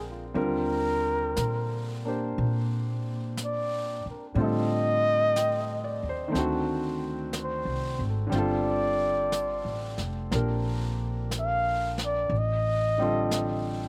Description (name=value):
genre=jazz ballad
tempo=60 BPM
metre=4/4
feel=swing 69% on 8ths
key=G minor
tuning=A4 = 439 Hz
part: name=trumpet with bucket mute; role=melody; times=0.0-13.9 s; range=F4 to F5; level=-30 LUFS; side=equal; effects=slapback echo
part: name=clear baby grand piano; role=accompaniment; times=0.0-13.9 s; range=D3 to G5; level=-33 LUFS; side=equal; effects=none
part: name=upright bass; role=bass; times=0.0-13.9 s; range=F1 to Bb2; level=-33 LUFS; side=equal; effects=none
part: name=jazz brush drum kit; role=drums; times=0.4-13.9 s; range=brushed snare drum, hi-hat, snare drum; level=-42 LUFS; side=equal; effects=none
room=little or no reverb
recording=recorded outdoors, with no room sound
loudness=-28 LUFS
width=mono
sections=0.0-13.9 A section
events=muted trumpet solo 0.0-13.9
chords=0.4 Ebmaj9; 4.4 Am7b5; 6.3 D7b9; 8.3 Gm11; 12.3 Am7b5